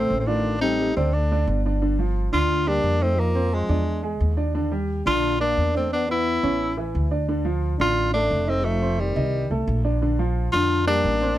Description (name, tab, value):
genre	jazz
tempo	176 BPM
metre	4/4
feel	straight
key	G minor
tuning	A4 = 444 Hz
part	bright tenor saxophone	melody	0.0-11.4 s	G3 to F4	-23 LUFS	equal	plate reverb
part	breathy trombone	second line	0.0-11.4 s	Eb3 to D4	-29 LUFS	left 4 dB	none
part	clear grand piano	accompaniment	0.0-11.4 s	D3 to Eb5	-27 LUFS	right 2 dB	none
part	upright bass	bass	0.0-11.4 s	F1 to F2	-24 LUFS	equal	none
room	light reverb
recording	dark, warm production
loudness	-20 LUFS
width	side -14 dB against mid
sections	0.0-1.8 A section; 1.8-11.4 B section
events	none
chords	0.4 Am7b5; 1.1 D5; 1.8 Gm7; 3.2 Fm7; 3.9 E7; 4.5 Ebmaj7; 5.9 E5; 6.6 A; 7.3 Dm; 8.6 F13; 10.0 Bb69